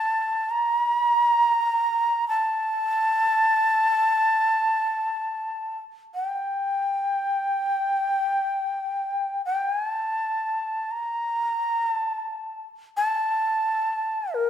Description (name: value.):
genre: japanese traditional, Japanese chamber music.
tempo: free time.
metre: none.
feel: none.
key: unclear.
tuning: A4 = 441 Hz.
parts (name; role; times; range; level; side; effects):
mellow shakuhachi; solo; 0.0-14.5 s; D5 to Bb5; -22 LUFS; equal; none.
room: moderate scoring stage reverb, RT60 1.5 s.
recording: minimal, uncompressed stereo recording.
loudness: -22 LUFS.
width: side -9 dB against mid.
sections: 0.0-14.5 A section.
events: none.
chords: none.